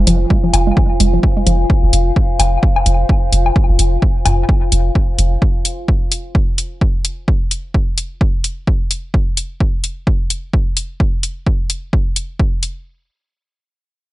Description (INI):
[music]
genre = minimal techno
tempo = 129 BPM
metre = 4/4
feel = swing 58% on 16ths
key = F minor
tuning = A4 = 438 Hz
[part]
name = hollow square pluck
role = riff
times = 0.0-1.6 s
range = F3 to Ab3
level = -19 LUFS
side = equal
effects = chorus, sidechain pumping, dub echo
[part]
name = punchy sub bass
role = bass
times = 0.0-5.4 s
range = F1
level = -14 LUFS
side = equal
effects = sidechain pumping
[part]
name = warbly tape-like pad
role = texture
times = 0.0-5.4 s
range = F4 to Ab5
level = -22 LUFS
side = left 1 dB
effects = chorus, built-in reverb, sidechain pumping
[part]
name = electronic hi-hat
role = drums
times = 0.1-12.7 s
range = none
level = -18 LUFS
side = left 1 dB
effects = none
[part]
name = electronic kick drum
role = drums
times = 0.3-12.5 s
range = none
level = -15 LUFS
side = equal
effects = none
[part]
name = electronic woodblock and toms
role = percussion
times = 0.5-4.4 s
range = none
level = -21 LUFS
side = left 5 dB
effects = overdrive, dub echo
[sound]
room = digital ambience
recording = echo-heavy mix, nothing above 10.6 kHz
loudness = -13 LUFS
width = side -17 dB against mid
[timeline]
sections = 0.0-12.9 A section; 12.9-14.1 B section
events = filter sweep on synth arpeggio sound 0.0-1.7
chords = 0.0 Fm; 12.9 N.C.